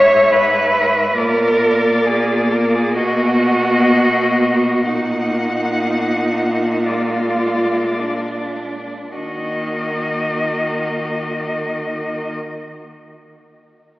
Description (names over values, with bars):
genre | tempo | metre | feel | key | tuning
classical, lyrical piece for cello ensemble | 51-71 BPM | 4/4 | rubato | Eb minor | A4 = 438 Hz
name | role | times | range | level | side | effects
rich cello | melody | 0.0-12.3 s | D5 to Gb5 | -22 LUFS | left 2 dB | none
rich cello | second line | 0.0-12.3 s | D4 to Db5 | -18 LUFS | right 1 dB | none
clear cello | accompaniment | 0.0-12.3 s | G#3 to Bb3 | -24 LUFS | left 1 dB | none
rich cello | bass | 0.0-12.3 s | G#2 to Eb3 | -21 LUFS | equal | none
room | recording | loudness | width
wet church reverb, RT60 3.5 s | AM radio sound | -15 LUFS | side -18 dB against mid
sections
0.0-9.1 A section; 9.1-13.7 B section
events
slowing down 0.0-9.1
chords
0.0 E/G#; 1.2 Bb; 3.0 Bmaj7; 4.8 Ebm/Bb; 6.9 Bb7; 9.1 Ebm